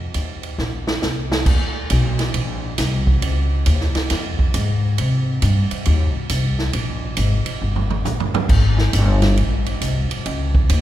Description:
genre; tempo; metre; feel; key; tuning
jazz, big band swing; 136 BPM; 4/4; swing 66% on 8ths; Eb major; A4 = 440 Hz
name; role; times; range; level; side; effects
upright bass; bass; 0.0-10.8 s; G1 to C3; -18 LUFS; equal; none
swinging big-band drum kit; drums; 0.1-10.8 s; crash cymbal, hi-hat, kick drum, ride cymbal, snare drum, toms; -22 LUFS; right 2 dB; none
room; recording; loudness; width
moderate cathedral reverb, RT60 4.1 s; recorded in a church or concert hall; -17 LUFS; side -13 dB against mid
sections
0.0-1.5 A section; 1.5-10.8 B section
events
drum fill 0.6-1.5, 7.6-8.5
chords
none

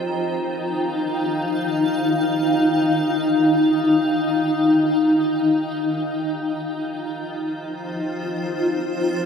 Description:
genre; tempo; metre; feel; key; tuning
ambient; free time; none; none; Eb major; A4 = 440 Hz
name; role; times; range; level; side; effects
granular cloud pad; solo; 0.0-9.3 s; Eb4 to Bb5; -19 LUFS; left 1 dB; built-in reverb, diffuse ambient delay
room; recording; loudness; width
wet cathedral reverb, RT60 6.4 s; in a vast, echoing space; -19 LUFS; side -6 dB against mid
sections
0.0-9.3 A section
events
none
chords
0.0 Ebadd9

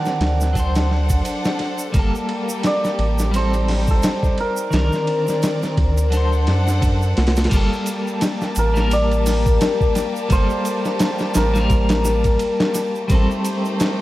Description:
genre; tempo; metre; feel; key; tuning
trip hop; 86 BPM; 4/4; swing 57% on 16ths; G harmonic minor; A4 = 441 Hz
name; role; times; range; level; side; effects
hammered dulcimer; melody; 0.0-14.0 s; A4 to A5; -24 LUFS; left 1 dB; tape echo
clean electric guitar; accompaniment; 0.0-14.0 s; Eb3 to C5; -25 LUFS; equal; tremolo, tape echo
rich studio violin section; sustained chords; 0.0-14.0 s; G3 to A5; -27 LUFS; left 1 dB; none
boom bap sampler-style drum kit; drums; 0.1-14.0 s; crash cymbal, hi-hat, kick drum, ride cymbal, snare drum; -21 LUFS; equal; studio reverb
egg shaker; percussion; 0.1-14.0 s; none; -34 LUFS; right 4 dB; none
round analog bass; bass; 0.2-13.3 s; G1 to F#2; -19 LUFS; equal; none
room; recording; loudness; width
studio reverb; none; -16 LUFS; side -16 dB against mid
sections
0.0-7.5 A section; 7.5-14.0 B section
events
none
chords
0.0 Cm9; 0.5 D7; 1.9 Gmadd9; 3.3 Am7b5; 4.7 Cm9; 6.1 D7; 7.5 Gmadd9; 13.1 Am7b5

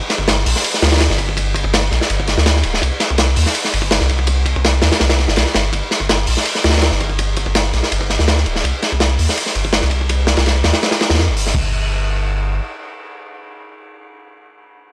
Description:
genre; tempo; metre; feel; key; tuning
drum and bass, jungle; 165 BPM; 4/4; straight; unclear; A4 = 440 Hz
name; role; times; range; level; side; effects
crunchy breakbeat drum kit; drums; 0.1-11.6 s; crash cymbal, hi-hat, kick drum, ride cymbal, snare drum; -16 LUFS; equal; high-pass filter on kick, high-pass filter on cymbals, high-pass filter on hats, high-pass filter on snare, high-pass filter on room
soft dub sub bass; bass; 0.2-12.6 s; D1 to F2; -16 LUFS; equal; none
room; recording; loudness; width
little or no reverb; dry, gritty hardware recording, transformer saturation; -13 LUFS; side -28 dB against mid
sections
0.0-11.6 A section; 11.6-14.5 B section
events
filter sweep on sub bass 0.0-11.6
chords
none

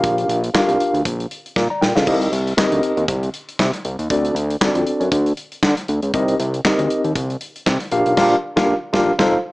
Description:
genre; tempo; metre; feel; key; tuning
early-eighties boogie funk; 118 BPM; 4/4; swing 56% on 16ths; unclear; A4 = 442 Hz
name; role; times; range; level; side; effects
mellow tine electric piano; accompaniment; 0.0-9.4 s; C4 to Bb5; -18 LUFS; equal; medium stereo tremolo, plate reverb
fat analog bass; bass; 0.0-9.4 s; F1 to D3; -20 LUFS; equal; none
modern studio drum kit; drums; 0.0-9.3 s; crash cymbal, handclaps, hi-hat, kick drum, snare drum; -21 LUFS; equal; gated reverb
room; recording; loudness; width
light reverb, studio ambience; small speaker sound; -16 LUFS; side -21 dB against mid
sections
0.0-9.5 A section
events
drum fill 1.6-2.1; band accent 8.2-9.5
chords
0.0 Bb6; 2.1 Cm7; 4.1 D7; 6.1 Cm7; 7.9 Bb6

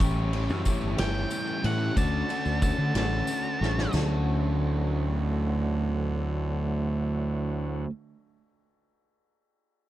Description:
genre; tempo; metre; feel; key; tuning
indie rock; 61 BPM (dotted quarters); 6/8; straight; D major; A4 = 439 Hz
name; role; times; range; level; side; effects
glockenspiel with hard plastic mallets; second line; 0.0-7.9 s; A5 to D6; -44 LUFS; left 5 dB; none
tonewheel organ; sustained chords; 0.0-7.9 s; D3 to A5; -40 LUFS; equal; slow rotary speaker
crunchy overdriven guitar; riff; 0.0-7.9 s; A2 to F#4; -32 LUFS; right 5 dB; lush chorus
mellow electric guitar; riff; 0.0-7.9 s; E3 to G4; -34 LUFS; left 7 dB; lush chorus
fuzz fingered electric bass; bass; 0.0-7.8 s; G1 to D3; -28 LUFS; equal; overdrive
loose indie drum kit; drums; 0.0-4.1 s; kick drum, ride cymbal, snare drum, splash cymbal, toms; -31 LUFS; equal; none
tambourine; percussion; 0.0-4.2 s; none; -45 LUFS; left 5 dB; none
octave-fuzz lead guitar; melody; 1.0-3.9 s; F#5 to A5; -32 LUFS; right 1 dB; distortion
room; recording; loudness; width
little or no reverb; none; -25 LUFS; side -14 dB against mid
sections
0.0-3.9 A section; 3.9-7.9 B section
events
lead electric guitar solo 0.0-3.9; drum fill 3.6-3.9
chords
0.0 A7; 2.0 Dmaj7

